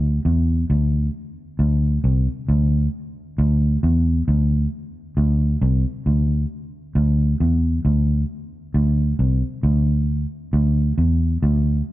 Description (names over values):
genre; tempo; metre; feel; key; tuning
reggae; 67 BPM; 4/4; swing 59% on 16ths; unclear; A4 = 440 Hz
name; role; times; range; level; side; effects
vintage muted fingered electric bass; solo; 0.0-11.8 s; C2 to E2; -18 LUFS; equal; none
room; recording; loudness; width
moderate echo chamber reverb, RT60 2.3 s; dark, warm production; -18 LUFS; side -16 dB against mid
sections
0.0-11.9 A section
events
none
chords
none